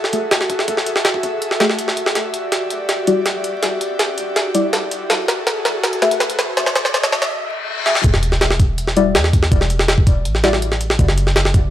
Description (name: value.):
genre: drum and bass, jungle.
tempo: 163 BPM.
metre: 4/4.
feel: straight.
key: unclear.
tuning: A4 = 440 Hz.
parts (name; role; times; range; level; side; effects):
airy breathy pad; sustained chords; 0.0-7.3 s; F#4 to E5; -23 LUFS; equal; chorus, vintage 12-bit sampler grit.
jungle sampler-style drum kit; drums; 0.0-11.6 s; hi-hat, kick drum, snare drum; -17 LUFS; equal; high-pass filter on snare, small room ambience, high-pass filter on hats, high-pass filter on kick.
deep mellow chord stab; stabs; 0.1-10.5 s; G3 to E5; -21 LUFS; left 3 dB; chorus, phaser, dub echo.
riser, reverse cymbal and sub drop; sound effects; 4.7-9.5 s; none; -26 LUFS; left 1 dB; none.
warm 808-style bass; bass; 8.0-11.7 s; E1 to E2; -18 LUFS; equal; none.
room: light reverb, digital ambience.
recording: vinyl crackle, high-pass filter.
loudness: -15 LUFS.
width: side -12 dB against mid.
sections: 0.0-8.0 A section; 8.0-11.7 B section.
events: build-up 0.0-8.0; filter sweep on synth stab 0.0-8.0; drum fill 2.2-7.3, 7.9; break 7.3-8.0; reverse cymbal 7.3-8.0; drop 8.0-11.7; impact 8.0-9.5.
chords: 0.0 F#m9; 2.2 Em9; 5.1 F#m9; 8.0 N.C..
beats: 0.31 | 0.68 1.05 1.42 1.79 | 2.15 2.52 2.89 3.26 | 3.63 4.00 4.36 4.73 | 5.10 5.47 5.84 6.20 | 6.57 6.94 7.31 7.68 | 8.04 8.41 8.78 9.15 | 9.52 9.88 10.25 10.62 | 10.99 11.36.